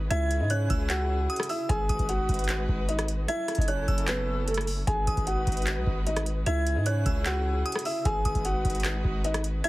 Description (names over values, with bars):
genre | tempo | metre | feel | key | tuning
hip hop, trap | 151 BPM | 4/4 | half-time | G# phrygian | A4 = 445 Hz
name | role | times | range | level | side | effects
dark chamber string section | sustained chords | 0.0-9.7 s | C#3 to B4 | -37 LUFS | left 1 dB | none
long sustained 808-style bass | bass | 0.0-9.6 s | F#1 to G#2 | -29 LUFS | equal | none
felt-muted upright piano | melody | 0.1-9.7 s | A3 to G#5 | -31 LUFS | equal | low-pass filter
glassy synth bell | second line | 0.1-9.7 s | D#6 to G#6 | -36 LUFS | equal | chorus, phaser, tape echo
booming analog drum machine | drums | 0.1-9.7 s | handclaps, hi-hat, kick drum, rim click | -29 LUFS | equal | overdrive
room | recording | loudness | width
little or no reverb | heavily compressed radio sound | -25 LUFS | side -18 dB against mid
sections
0.0-9.7 A section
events
none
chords
0.1 C#m; 1.7 G#m7; 3.3 F#m7; 4.9 G#m7; 6.5 C#m; 8.1 G#m7